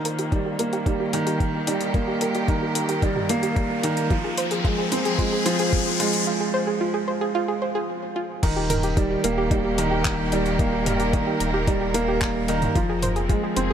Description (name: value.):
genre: piano and strings electronica.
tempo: 111 BPM.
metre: 4/4.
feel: straight.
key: unclear.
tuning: A4 = 440 Hz.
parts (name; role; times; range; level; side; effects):
rich studio string section; sustained chords; 0.0-13.7 s; Eb3 to C5; -30 LUFS; left 1 dB; sidechain pumping.
clear upright piano; riff; 0.0-13.7 s; Eb3 to C4; -24 LUFS; right 2 dB; digital delay.
warm sub bass; bass; 0.0-13.7 s; Eb1 to F1; -30 LUFS; left 1 dB; tube saturation, sidechain pumping, high-pass filter.
riser; sound effects; 2.0-6.3 s; none; -30 LUFS; left 2 dB; none.
soft round pluck; arpeggios; 0.1-13.7 s; Eb4 to C5; -28 LUFS; right 2 dB; chorus, sidechain pumping, digital delay.
deep house drum kit; drums; 0.1-13.7 s; crash cymbal, handclaps, hi-hat, toms; -30 LUFS; left 1 dB; overdrive.
electronic kick drum; drums; 0.3-13.4 s; none; -24 LUFS; left 1 dB; none.
room: light reverb, digital ambience.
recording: none.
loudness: -20 LUFS.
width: side -8 dB against mid.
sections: 0.0-8.4 A section; 8.4-13.7 B section.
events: build-up 0.0-8.4; filter sweep on synth arpeggio sound 0.0-8.4; riser 2.0-6.3; break 6.3-8.4; drop 8.4-13.7.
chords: 0.0 Eb; 4.1 Fm; 8.4 Eb; 12.8 Fm.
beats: 0.32 0.86 1.41 | 1.95 2.49 3.03 3.57 | 4.11 4.65 5.19 5.73 | 6.27 6.81 7.35 7.89 | 8.43 8.97 9.51 10.05 | 10.59 11.13 11.68 12.22 | 12.76 13.30.